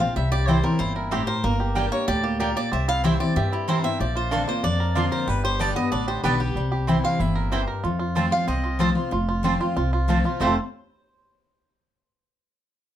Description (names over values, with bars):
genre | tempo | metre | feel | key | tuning
bluegrass | 188 BPM | 4/4 | straight | F major | A4 = 440 Hz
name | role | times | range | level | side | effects
picked swing-style acoustic guitar | melody | 0.0-10.6 s | E4 to F5 | -27 LUFS | equal | none
picked steel-string acoustic guitar | accompaniment | 0.0-10.5 s | F2 to G4 | -26 LUFS | left 2 dB | none
bluegrass banjo | arpeggios | 0.0-10.6 s | F3 to Bb4 | -29 LUFS | right 3 dB | none
upright bass | bass | 0.0-10.6 s | F1 to G2 | -26 LUFS | equal | none
mandolin | stabs | 0.5-10.5 s | Bb3 to C6 | -27 LUFS | right 4 dB | none
room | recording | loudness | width
moderate studio reverb, RT60 0.5 s | dark, warm production | -21 LUFS | side -11 dB against mid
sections
0.0-9.1 A section; 9.1-10.4 B section; 10.4-11.7 C section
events
none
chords
0.2 C; 1.4 Gm; 2.7 C; 4.0 Bbadd9; 5.3 Gadd9; 6.6 C; 7.8 F